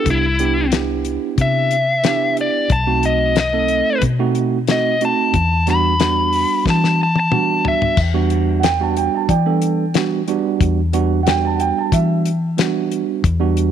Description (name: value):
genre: straight-eighth soul blues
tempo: 91 BPM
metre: 4/4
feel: straight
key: E minor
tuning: A4 = 444 Hz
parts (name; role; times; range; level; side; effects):
- biting lead guitar; melody; 0.0-8.0 s; E4 to B5; -18 LUFS; left 2 dB; overdrive
- bright tine electric piano; accompaniment; 0.0-13.7 s; G3 to A4; -21 LUFS; right 10 dB; medium stereo tremolo
- vintage muted fingered electric bass; bass; 0.1-13.7 s; B1 to E3; -19 LUFS; left 2 dB; none
- damped 70s drum kit; drums; 0.1-13.7 s; crash cymbal, hi-hat, kick drum, snare drum, toms; -21 LUFS; left 5 dB; none
- dark upright piano; second line; 8.6-12.6 s; D5 to A5; -21 LUFS; right 9 dB; none
room: light reverb, small room ambience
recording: 1960s-style stereo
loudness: -15 LUFS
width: side -9 dB against mid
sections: 0.0-8.0 A section; 8.0-13.7 B section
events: drum fill 6.7-8.0; upright piano solo 8.0-13.7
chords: 0.0 Cmaj7; 2.7 B7b9; 5.3 Em9